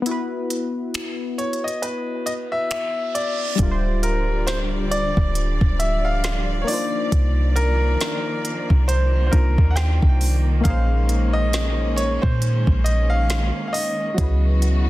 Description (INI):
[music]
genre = contemporary R&B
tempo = 68 BPM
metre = 4/4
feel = swing 58% on 16ths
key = unclear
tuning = A4 = 439 Hz
[part]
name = warm analog keys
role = accompaniment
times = 0.0-14.9 s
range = F#3 to C5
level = -28 LUFS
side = left 3 dB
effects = chorus
[part]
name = smooth R&B drum kit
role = drums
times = 0.1-14.9 s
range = finger snaps, hi-hat, kick drum, snare drum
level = -23 LUFS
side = equal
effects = soft clipping on snare
[part]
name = clear baby grand piano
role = melody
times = 1.4-14.9 s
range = Bb4 to G5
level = -25 LUFS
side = equal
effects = digital delay
[part]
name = reverse cymbal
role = sound effects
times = 2.6-3.6 s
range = none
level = -32 LUFS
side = right 6 dB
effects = none
[part]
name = rich studio string section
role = sustained chords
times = 3.6-14.9 s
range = C#3 to D5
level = -30 LUFS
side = right 1 dB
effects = none
[part]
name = clean 808-style bass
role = bass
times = 3.6-14.9 s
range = D1 to Bb2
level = -19 LUFS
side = equal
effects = none
[part]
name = soft synth bell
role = texture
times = 3.6-14.9 s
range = G#4 to E5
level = -42 LUFS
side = equal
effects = none
[sound]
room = little or no reverb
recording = dense, heavily limited modern master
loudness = -18 LUFS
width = side -16 dB against mid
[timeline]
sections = 0.0-3.6 A section; 3.6-14.9 B section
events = break 0.1-3.6; reverse cymbal 2.6-3.6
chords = 0.1 Bsus4; 3.6 Dm11; 6.7 Cm11; 10.6 Bbm11; 14.2 C#m11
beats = | 0.06 0.94 1.82 2.71 | 3.59 4.47 5.36 6.24 | 7.12 8.00 8.88 9.77 | 10.65 11.53 12.41 13.30 | 14.18